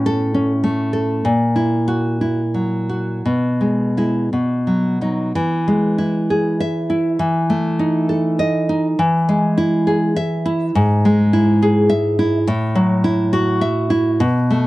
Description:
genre	romantic piece for solo classical guitar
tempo	55-71 BPM (dotted quarters)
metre	6/8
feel	rubato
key	E major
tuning	A4 = 440 Hz
part	nylon-string guitar	solo	0.0-14.7 s	G#2 to E5	-15 LUFS	equal	none
room	light reverb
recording	dry, close 1970s-style studio recording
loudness	-15 LUFS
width	side -18 dB against mid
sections	0.0-5.3 A section; 5.3-14.7 B section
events	none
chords	0.0 A; 1.2 F#7/A#; 3.2 E/B; 4.3 B; 5.3 E; 7.2 Esus4; 9.0 E; 10.7 E/G#; 12.5 F#m7/A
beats	0.35 | 1.24 2.20 | 3.25 4.31 | 5.35 6.29 | 7.20 8.09 | 8.98 9.87 | 10.74 11.61 | 12.47 13.33 | 14.21

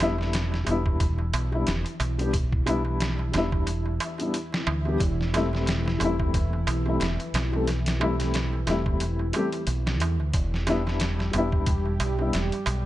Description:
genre	trip hop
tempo	90 BPM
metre	4/4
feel	swing 57% on 16ths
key	E minor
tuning	A4 = 440 Hz
part	felt-muted upright piano	accompaniment	0.0-12.4 s	G3 to A4	-29 LUFS	left 2 dB	tremolo, tape echo
part	dark analog pad	sustained chords	0.5-12.9 s	E3 to G4	-34 LUFS	equal	chorus
part	deep dub fingered electric bass	bass	0.0-12.9 s	E1 to E2	-27 LUFS	equal	none
part	trip hop sampler-style drum kit	drums	0.0-12.8 s	hi-hat, kick drum, snare drum	-29 LUFS	equal	none
part	darbuka	percussion	0.0-12.8 s	none	-35 LUFS	right 5 dB	none
room	digital ambience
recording	nothing above 10.8 kHz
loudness	-23 LUFS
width	side -15 dB against mid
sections	0.0-12.9 A section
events	none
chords	0.0 Em7; 5.0 C6/E; 10.3 Em7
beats	0.34 1.00 1.67 | 2.33 3.00 3.67 4.33 | 5.00 5.67 6.33 7.00 | 7.67 8.34 9.00 9.67 | 10.34 11.00 11.67 12.34

